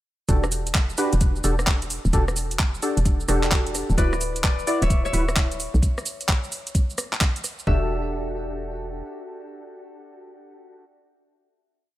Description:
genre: UK garage, two-step garage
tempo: 130 BPM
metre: 4/4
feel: swing 65% on 16ths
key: E dorian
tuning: A4 = 441 Hz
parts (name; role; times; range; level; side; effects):
- percussive organ stab; stabs; 0.3-10.8 s; D4 to D5; -28 LUFS; equal; ensemble chorus, tape echo
- hollow knocking FM bass; bass; 0.3-9.0 s; D1 to B1; -25 LUFS; equal; sidechain pumping
- electronic kick drum; drums; 0.3-7.8 s; none; -21 LUFS; equal; studio reverb
- garage drum kit; drums; 0.3-7.7 s; handclaps, hi-hat, rim click, shaker; -26 LUFS; equal; studio reverb
- Celtic harp; melody; 4.0-10.8 s; B4 to E5; -32 LUFS; left 4 dB; digital delay
room: little or no reverb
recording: none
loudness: -20 LUFS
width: side -15 dB against mid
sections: 0.3-7.7 drop; 7.7-11.4 final chord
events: drop 0.3-7.7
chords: 0.3 Em11; 4.0 D69; 7.7 Em11

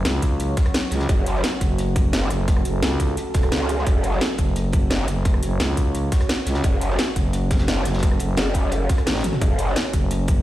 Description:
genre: dark technical drum and bass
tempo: 173 BPM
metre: 4/4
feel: straight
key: F# minor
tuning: A4 = 440 Hz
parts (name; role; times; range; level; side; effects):
- deep dark ambient pad; sustained chords; 0.0-10.4 s; C#4 to C#5; -29 LUFS; right 1 dB; chorus, built-in reverb, sidechain pumping
- growling FM bass; bass; 0.0-10.4 s; E1 to C#2; -22 LUFS; equal; none
- crunchy breakbeat drum kit; drums; 0.0-10.4 s; hi-hat, snare drum; -34 LUFS; equal; high-pass filter on hats, high-pass filter on snare, high-pass filter on room
- drum and bass drum kit; drums; 0.1-10.4 s; hi-hat, rim click, snare drum, toms; -26 LUFS; equal; none
- electronic kick drum; drums; 0.2-10.4 s; none; -19 LUFS; equal; none
- growl bass; bass; 1.1-9.7 s; F#1 to C#2; -22 LUFS; equal; chorus, overdrive, sidechain pumping
room: light reverb, digital ambience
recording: played on a big sound system in a bare room, stone room reverb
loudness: -18 LUFS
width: side -14 dB against mid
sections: 0.0-10.4 A section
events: drum fill 9.2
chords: 0.0 F#5

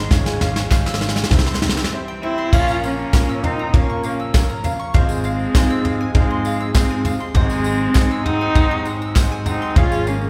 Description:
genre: indie folk with a building arrangement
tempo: 100 BPM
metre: 4/4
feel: straight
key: unclear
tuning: A4 = 438 Hz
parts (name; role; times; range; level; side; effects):
- clear upright piano; accompaniment; 0.0-10.3 s; Ab1 to G5; -35 LUFS; equal; none
- picked twelve-string acoustic guitar; accompaniment; 0.0-10.3 s; Ab2 to C5; -33 LUFS; equal; none
- warm chamber string section; sustained chords; 0.0-10.3 s; C3 to Db4; -35 LUFS; equal; none
- bowl-back mandolin; arpeggios; 0.0-10.3 s; Eb5 to E6; -32 LUFS; equal; none
- fingered electric bass; bass; 0.0-10.3 s; Ab1 to Bb2; -28 LUFS; equal; none
- soft brush drum kit; drums; 0.1-9.9 s; crash cymbal, kick drum, snare drum, toms; -20 LUFS; equal; none
- tambourine; percussion; 0.1-10.3 s; none; -43 LUFS; equal; none
- group handclap; percussion; 0.7-9.3 s; none; -36 LUFS; equal; none
- dark cello; melody; 2.2-10.3 s; C4 to F4; -25 LUFS; equal; none
- warm trumpet; second line; 2.2-10.3 s; Ab3 to Db4; -31 LUFS; equal; none
room: light reverb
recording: none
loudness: -18 LUFS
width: mono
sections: 0.0-2.5 A section; 2.5-10.3 B section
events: build-up 0.0-2.5; drum fill 0.0-1.9; upright piano fill 1.3-2.5; break 1.9-2.5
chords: 0.1 Db/Ab; 1.3 C; 2.5 Bbm; 4.9 Fm/Ab; 7.4 Ab7; 9.8 Db/Ab

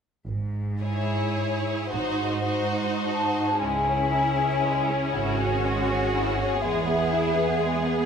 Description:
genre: classical, slow romantic movement for symphony orchestra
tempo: 34-41 BPM (dotted quarters)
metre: 6/8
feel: rubato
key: C# minor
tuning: A4 = 438 Hz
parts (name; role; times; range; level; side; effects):
- bright studio cello section; bass; 0.3-8.1 s; G#2 to G#4; -29 LUFS; right 2 dB; none
- rich studio double bass section; bass; 0.3-7.8 s; G#1 to E2; -29 LUFS; right 4 dB; none
- rich studio violin section; melody; 0.8-8.1 s; G#4 to C#5; -31 LUFS; left 4 dB; none
- rich studio violin section; second line; 0.8-8.1 s; G#3 to G#4; -30 LUFS; left 2 dB; none
- clear studio viola section; accompaniment; 0.8-8.1 s; B3 to E4; -30 LUFS; right 1 dB; none
- mellow hollow large flute ensemble; second line; 3.0-7.8 s; E5 to A5; -27 LUFS; left 3 dB; none
room: wet concert hall reverb, RT60 2.4 s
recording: none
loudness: -23 LUFS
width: side -7 dB against mid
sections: 0.3-3.6 A section; 3.6-8.1 B section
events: none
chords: 0.3 C#m/G#; 1.9 G#7; 3.6 C#m; 6.6 E

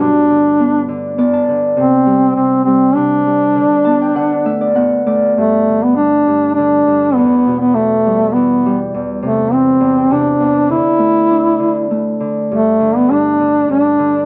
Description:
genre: children's music, lullaby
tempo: 101 BPM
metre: 3/4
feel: rubato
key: G major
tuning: A4 = 440 Hz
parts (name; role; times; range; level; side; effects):
- mellow duduk; melody; 0.0-14.3 s; A3 to E4; -14 LUFS; equal; cassette tape
- Celtic harp; accompaniment; 0.0-14.3 s; E2 to A5; -19 LUFS; equal; cassette tape
room: light reverb, small room reverb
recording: home recording on cassette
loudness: -13 LUFS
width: mono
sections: 0.0-5.4 A section; 5.4-14.3 B section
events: harp fill 0.9-1.8, 3.6-5.4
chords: 0.0 G; 1.8 Csus2; 3.6 Gadd9/D; 4.2 D5; 5.4 G5; 7.2 Em; 8.9 Amadd11/E (rootless); 10.7 Dsus2; 12.5 G5

